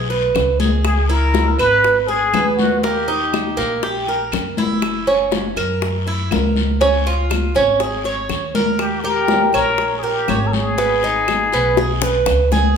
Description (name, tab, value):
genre	latin, Cuban son and guajira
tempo	121 BPM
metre	4/4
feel	straight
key	G# minor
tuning	A4 = 440 Hz
part	Cuban tres	arpeggios	0.0-12.8 s	A#3 to C#5	-19 LUFS	right 3 dB	none
part	upright bass	bass	0.0-12.8 s	F#1 to F#2	-22 LUFS	equal	none
part	bongos	percussion	0.1-12.6 s	none	-25 LUFS	left 6 dB	none
part	congas	percussion	0.1-12.8 s	none	-24 LUFS	left 3 dB	none
part	claves	percussion	0.3-12.5 s	none	-32 LUFS	right 2 dB	none
part	guiro	percussion	0.3-12.8 s	none	-31 LUFS	left 7 dB	none
part	trumpet with plunger mute	melody	0.8-3.8, 8.8-12.3 s	F#4 to B4	-19 LUFS	left 2 dB	none
room	moderate large studio reverb, RT60 1.2 s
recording	band playing live in one room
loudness	-15 LUFS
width	side -7 dB against mid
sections	0.0-12.8 A section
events	drum fill 11.8-12.8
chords	0.0 E (rootless); 0.9 C#m7; 2.8 D#; 4.8 F#7; 6.8 C#; 8.8 D#7; 10.8 G#m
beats	0.36 | 0.85 1.35 1.85 2.34 | 2.84 3.34 3.83 4.33 | 4.83 5.32 5.82 6.32 | 6.81 7.31 7.81 8.30 | 8.80 9.30 9.79 10.29 | 10.79 11.29 11.78 12.28